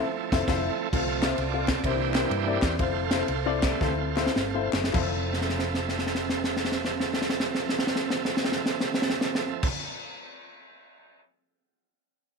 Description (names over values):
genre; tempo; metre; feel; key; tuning
uptempo gospel; 100-134 BPM; 4/4; swing 65% on 8ths; F major; A4 = 441 Hz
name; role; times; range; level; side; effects
dark baby grand piano; accompaniment; 0.0-9.7 s; F2 to F5; -30 LUFS; left 13 dB; none
bright tonewheel organ; sustained chords; 0.0-9.7 s; E3 to F5; -31 LUFS; right 12 dB; slow rotary speaker, overdrive
hollow-body short-scale fingered electric bass; bass; 0.3-9.7 s; F1 to G2; -33 LUFS; right 1 dB; none
crisp fusion drum kit; drums; 0.3-11.2 s; crash cymbal, kick drum, ride cymbal, snare drum; -27 LUFS; equal; none
group handclap; percussion; 1.2-9.7 s; none; -39 LUFS; left 13 dB; none
room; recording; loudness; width
light reverb, studio reverb; 1960s-style stereo with parts hard left and right; -24 LUFS; side -4 dB against mid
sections
0.9-4.9 A section; 4.9-9.7 B section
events
band accent 0.0-0.9; slowing down 0.9-4.9; tonewheel organ solo 0.9-4.9; drum fill 3.8-4.9, 5.2-9.6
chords
0.0 Fmaj7; 0.9 F/C; 1.8 C7; 2.8 Fmaj7